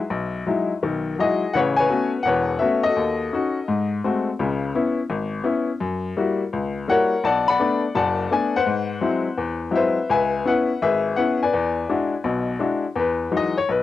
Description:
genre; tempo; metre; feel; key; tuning
solo jazz; 168 BPM; 4/4; swing 65% on 8ths; A major; A4 = 439 Hz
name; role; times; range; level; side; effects
bright upright piano; solo; 0.0-13.8 s; E1 to B5; -20 LUFS; left 3 dB; cassette tape
room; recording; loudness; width
moderate booth ambience, RT60 0.2 s; home recording on cassette; -20 LUFS; side -13 dB against mid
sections
0.0-1.5 A section; 1.5-12.9 B section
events
none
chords
0.0 Emaj9; 1.5 A69; 3.0 D#m7b5; 3.7 G#7b9; 4.4 C#m7; 5.8 F#7b9; 7.2 Bm7; 8.7 G#7alt; 10.1 C#m7; 11.5 E9; 12.9 Emaj9

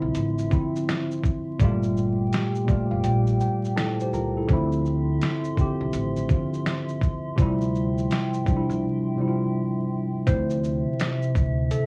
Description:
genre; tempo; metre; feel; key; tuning
lo-fi hip hop; 83 BPM; 4/4; swing 63% on 16ths; D minor; A4 = 437 Hz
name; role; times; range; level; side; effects
tine electric piano; accompaniment; 0.0-11.9 s; A2 to Bb5; -27 LUFS; equal; none
warbly tape-like pad; sustained chords; 0.0-11.9 s; C3 to C6; -35 LUFS; equal; chorus, built-in reverb, plate reverb
upright bass; bass; 0.0-11.7 s; F1 to D2; -31 LUFS; equal; tube saturation
boom bap sampler-style drum kit; drums; 0.1-11.9 s; finger snaps, hi-hat, kick drum, shaker, snare drum; -27 LUFS; equal; none
room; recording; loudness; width
moderate studio ambience, RT60 0.5 s; worn, warbling old tape, cassette tape, vinyl crackle, warbly pitch drift, small room ambience, faint mains hum; -24 LUFS; mono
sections
0.0-10.3 A section; 10.3-11.9 B section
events
tine electric piano fill 2.3-4.5; break 8.8-10.3; tine electric piano solo 10.3-11.9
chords
0.0 Dm9; 1.6 Gm9; 4.5 Dm9; 7.4 Dm11; 10.3 Dm9

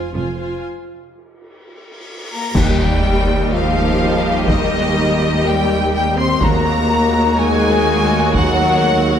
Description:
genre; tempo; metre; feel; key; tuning
cinematic, epic orchestral film score; 124 BPM; 4/4; straight; Eb major; A4 = 440 Hz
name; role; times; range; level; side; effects
rich studio violin section; melody; 0.0-9.2 s; Eb5 to C6; -22 LUFS; left 2 dB; none
warm symphonic violin section; second line; 0.0-9.2 s; Bb4 to Eb5; -26 LUFS; left 3 dB; none
rich symphonic viola section; accompaniment; 0.0-9.2 s; G3 to G4; -22 LUFS; right 1 dB; none
rich symphonic cello section; bass; 0.0-9.2 s; Eb2 to F2; -23 LUFS; right 2 dB; none
rich symphonic double bass section; bass; 0.0-9.2 s; F1 to Eb2; -22 LUFS; right 3 dB; none
cymbal swell and impact; sound effects; 1.5-4.5 s; none; -29 LUFS; equal; none
mellow hollow concert flute; second line; 2.3-9.0 s; Eb5 to C6; -24 LUFS; left 2 dB; none
mellow French horn section; sustained chords; 2.3-9.2 s; Eb3 to C4; -20 LUFS; left 3 dB; none
taiko ensemble; drums; 2.5-8.8 s; none; -21 LUFS; equal; none
timpani; percussion; 2.5-3.2 s; Eb3; -24 LUFS; left 1 dB; none
clash cymbals and concert bass drum; percussion; 2.6-3.5 s; none; -22 LUFS; equal; none
room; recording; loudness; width
moderate scoring stage reverb, RT60 1.7 s; none; -13 LUFS; side -8 dB against mid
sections
0.0-2.6 A section; 2.6-9.2 B section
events
break 0.6-2.6; cymbal swell 1.5-2.6; band accent 2.6-3.0; impact 2.6-4.5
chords
0.0 Fm; 2.6 Eb; 6.4 Gbadd9/Eb

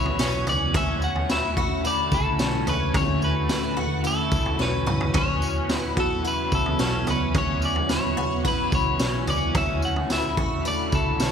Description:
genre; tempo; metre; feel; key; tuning
dream pop; 109 BPM; 4/4; straight; D major; A4 = 439 Hz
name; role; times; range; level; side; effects
electric guitar at the edge of break-up; melody; 0.0-11.3 s; A4 to F#5; -27 LUFS; left 1 dB; ping-pong delay
crunchy overdriven guitar; accompaniment; 0.0-11.3 s; D3 to F#4; -34 LUFS; right 5 dB; tremolo, analog chorus
warbly tape-like pad; sustained chords; 0.0-11.3 s; C#3 to F#4; -29 LUFS; equal; chorus, built-in reverb
picked twelve-string acoustic guitar; arpeggios; 0.0-11.3 s; C#4 to F#4; -29 LUFS; left 3 dB; analog chorus, ping-pong delay
vintage muted picked electric bass; bass; 0.0-11.3 s; B1 to D2; -29 LUFS; equal; none
raw garage drum kit; drums; 0.1-11.3 s; kick drum, snare drum, tambourine, toms; -26 LUFS; equal; none
room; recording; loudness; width
moderate plate reverb, RT60 1.0 s, small room ambience; bright 1980s-style digital production; -21 LUFS; side -7 dB against mid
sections
0.0-11.3 A section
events
drum fill 4.6-5.1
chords
0.0 F#7sus4; 0.7 Dmaj9; 5.1 F#7sus4; 9.6 Dmaj9

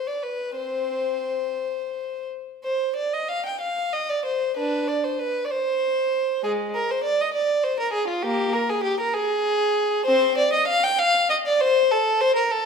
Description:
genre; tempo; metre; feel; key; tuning
classical, baroque-style suite movement for unaccompanied violin; 55-67 BPM (dotted quarters); 6/8; rubato; C minor; A4 = 440 Hz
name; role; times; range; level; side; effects
dark violin; solo; 0.0-12.7 s; Ab3 to G5; -21 LUFS; equal; none
room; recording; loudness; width
moderate recital hall reverb, RT60 1.6 s; minimal, uncompressed stereo recording; -21 LUFS; side -6 dB against mid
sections
0.0-2.6 A section; 2.6-12.7 B section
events
none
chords
none

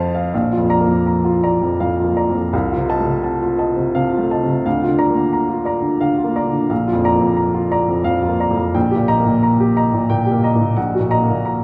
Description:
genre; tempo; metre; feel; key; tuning
classical, romantic character piece for solo piano; 70-90 BPM; 3/4; rubato; Bb major; A4 = 440 Hz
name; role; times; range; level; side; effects
clear upright piano; solo; 0.0-11.6 s; Bb1 to Bb5; -17 LUFS; equal; none
room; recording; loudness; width
wet concert hall reverb, RT60 2.5 s; none; -17 LUFS; mono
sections
0.3-11.6 A section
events
none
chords
0.3 Bb; 2.5 F7/C; 4.7 Bb/D; 6.7 Bb; 8.8 Eb/Bb; 10.8 Ebm/Bb

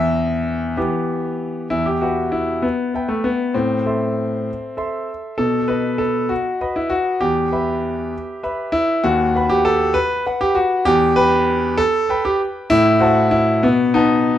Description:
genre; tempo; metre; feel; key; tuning
classical-period piano sonatina; 66 BPM (dotted quarters); 6/8; straight; E minor; A4 = 440 Hz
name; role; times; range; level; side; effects
bright grand piano; solo; 0.0-14.4 s; D#2 to C6; -16 LUFS; left 1 dB; none
room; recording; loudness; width
light reverb; dark, warm production; -16 LUFS; side -11 dB against mid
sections
0.0-1.7 A section; 1.7-14.4 A section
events
none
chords
0.0 Em; 3.6 Am; 5.4 B; 7.2 Em; 9.0 B/D#; 10.9 Em; 12.7 F#dim/A; 13.6 B7

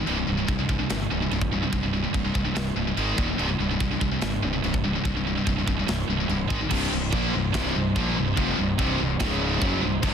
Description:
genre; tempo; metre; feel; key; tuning
heavy metal; 145 BPM; 4/4; straight; unclear; A4 = 440 Hz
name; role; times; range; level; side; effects
heavy high-gain guitar; riff; 0.0-10.1 s; C2 to Bb3; -28 LUFS; right 11 dB; distortion
scooped high-gain guitar; riff; 0.0-10.1 s; C2 to Bb3; -28 LUFS; left 10 dB; distortion
fuzz fingered electric bass; bass; 0.1-10.1 s; C1 to C2; -29 LUFS; equal; overdrive
tight metal drum kit; drums; 0.1-10.1 s; china cymbal, crash cymbal, kick drum, snare drum; -29 LUFS; equal; soft clipping on kick
warm symphonic string section; sustained chords; 6.7-10.1 s; G3 to Db5; -37 LUFS; left 2 dB; none
thick fuzz guitar; riff; 6.7-10.1 s; C2 to Bb3; -29 LUFS; equal; distortion
room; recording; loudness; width
small room ambience; dense, heavily limited modern master; -22 LUFS; side -7 dB against mid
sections
0.0-6.7 A section; 6.7-10.1 B section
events
none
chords
0.1 C5; 3.0 Ab5; 3.2 Eb5; 3.4 C5; 6.5 Ab5; 6.7 Cm; 9.2 Db5; 9.6 Cm

